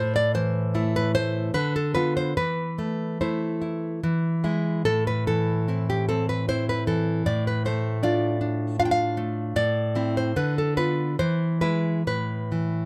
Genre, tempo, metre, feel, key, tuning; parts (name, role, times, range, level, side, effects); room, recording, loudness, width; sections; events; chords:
romantic piece for solo classical guitar; 66-80 BPM; 3/4; rubato; A minor; A4 = 442 Hz
nylon-string guitar; solo; 0.0-12.9 s; A2 to G5; -25 LUFS; equal
light reverb; close, detailed microphones; -25 LUFS; mono
0.0-12.9 A section
0.0 A5; 1.5 Bdim/D; 2.4 Am/E; 4.0 E; 4.9 Am; 7.3 Dm/A; 9.6 Am; 10.4 Bdim/D; 11.2 E; 12.1 A5